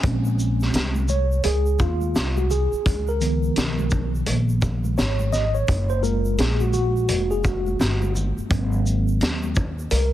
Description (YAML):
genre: hip hop, jazz-hop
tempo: 85 BPM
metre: 4/4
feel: swing 62% on 16ths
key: Bb minor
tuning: A4 = 439 Hz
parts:
  - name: mellow tine electric piano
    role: accompaniment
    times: 0.0-10.1 s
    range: Eb3 to Eb5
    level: -25 LUFS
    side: equal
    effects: medium stereo tremolo
  - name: upright bass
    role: bass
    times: 0.0-10.1 s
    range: F1 to Eb2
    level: -22 LUFS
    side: equal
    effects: none
  - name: vintage drum kit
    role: drums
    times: 0.0-10.1 s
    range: hi-hat, kick drum, shaker, snare drum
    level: -25 LUFS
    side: equal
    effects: none
  - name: egg shaker and congas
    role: percussion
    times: 0.0-10.1 s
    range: none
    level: -36 LUFS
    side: left 2 dB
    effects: none
room: small room ambience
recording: heavily compressed radio sound, multiband compression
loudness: -20 LUFS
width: side -13 dB against mid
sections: 0.0-10.1 A section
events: tine electric piano solo 0.0-10.1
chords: 0.0 Bbm9; 2.9 Db7; 5.7 Gbmaj7; 8.5 Ab7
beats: | 0.03 0.74 1.45 2.15 | 2.86 3.56 4.27 4.98 | 5.68 6.39 7.09 7.80 | 8.51 9.21 9.92